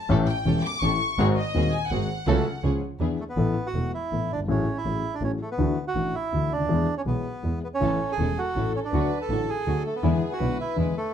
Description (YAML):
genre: tango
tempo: 163 BPM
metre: 3/4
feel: rubato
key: A major from 3.4 s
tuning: A4 = 440 Hz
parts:
  - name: warm studio violin section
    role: second line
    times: 0.0-2.6, 7.8-11.1 s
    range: G#4 to D6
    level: -31 LUFS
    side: left 3 dB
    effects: none
  - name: warm concert grand piano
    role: accompaniment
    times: 0.1-10.9 s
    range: D#1 to A4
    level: -26 LUFS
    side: left 3 dB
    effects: none
  - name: dark studio string section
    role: stabs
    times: 0.1-3.2, 7.8-10.9 s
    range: G#3 to A4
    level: -35 LUFS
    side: right 2 dB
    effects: none
  - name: clear double bass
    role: bass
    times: 0.1-10.9 s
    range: E1 to E2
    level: -29 LUFS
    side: right 3 dB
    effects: none
  - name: bandoneon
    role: melody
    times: 3.2-11.1 s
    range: G#3 to A4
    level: -29 LUFS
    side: right 4 dB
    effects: none
room: moderate club reverb, RT60 0.8 s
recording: dark, warm production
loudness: -23 LUFS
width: side -9 dB against mid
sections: 0.0-3.4 A section; 3.4-11.1 B section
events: violin section solo 0.0-3.4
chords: 0.1 A7; 1.2 G#7; 2.3 F#m/C#; 2.6 C#; 3.0 E7; 3.4 Asus2; 4.5 F#madd9/A; 5.6 Dadd9; 6.7 E; 7.8 A; 8.9 D; 10.0 E7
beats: | 0.10 0.46 0.82 | 1.18 1.54 1.91 | 2.27 2.63 3.00 | 3.37 3.75 4.12 | 4.48 4.85 5.22 | 5.59 5.95 6.33 | 6.70 7.07 7.44 | 7.82 8.19 8.56 | 8.93 9.30 9.67 | 10.04 10.40 10.77